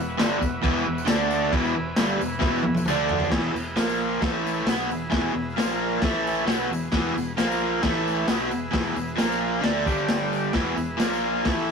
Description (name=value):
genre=garage rock duo or trio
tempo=133 BPM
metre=4/4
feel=straight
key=unclear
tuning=A4 = 439 Hz
part: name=combo organ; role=sustained chords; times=0.0-11.7 s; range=E4 to B5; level=-32 LUFS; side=left 1 dB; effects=none
part: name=overdriven electric guitar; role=riff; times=0.0-11.7 s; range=E2 to D4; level=-24 LUFS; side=right 1 dB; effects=none
part: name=fuzz fingered electric bass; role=bass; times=0.0-11.7 s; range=E1 to D2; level=-35 LUFS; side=equal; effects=overdrive
part: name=crunchy breakbeat drum kit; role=drums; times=0.2-11.6 s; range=crash cymbal, hi-hat, kick drum, snare drum, toms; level=-26 LUFS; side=left 1 dB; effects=none
part: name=tambourine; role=percussion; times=0.2-11.5 s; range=none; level=-45 LUFS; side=left 4 dB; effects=none
room=light reverb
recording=rough rehearsal-room recording, tube saturation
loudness=-22 LUFS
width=side -6 dB against mid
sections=0.0-3.3 A section; 3.3-11.7 B section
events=drum fill 2.4-3.3; transistor combo organ fill 5.6-6.9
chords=0.0 E5; 1.1 D5; 1.5 E; 2.9 D5; 3.3 E; 3.8 A#5; 4.2 A5; 4.7 E; 5.6 A#5; 6.0 A5; 6.5 E; 7.4 A#5; 7.8 A5; 8.3 E; 9.2 A#5; 9.6 D5; 9.9 G5; 10.5 E; 11.0 A#5